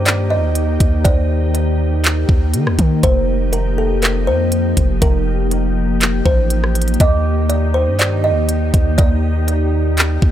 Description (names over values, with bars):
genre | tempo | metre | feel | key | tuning
hip hop, atmospheric cloud-rap | 121 BPM | 4/4 | half-time | Eb major | A4 = 438 Hz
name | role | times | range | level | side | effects
kalimba | melody | 0.0-9.4 s | A4 to Eb5 | -22 LUFS | right 1 dB | tape echo
glassy FM pad | sustained chords | 0.0-10.3 s | Eb3 to G4 | -21 LUFS | left 1 dB | ensemble chorus, built-in reverb, sidechain pumping
long sustained 808-style bass | bass | 0.0-10.3 s | F1 to Eb3 | -17 LUFS | equal | none
large celesta | texture | 0.0-10.3 s | Eb4 to D6 | -34 LUFS | right 2 dB | none
trap drum kit | drums | 0.1-10.3 s | handclaps, hi-hat, kick drum, rim click | -15 LUFS | equal | none
room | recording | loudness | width
little or no reverb | none | -13 LUFS | side -11 dB against mid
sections
0.0-10.3 A section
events
none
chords
0.0 Ebmaj7; 3.0 F9sus4; 7.0 Ebmaj7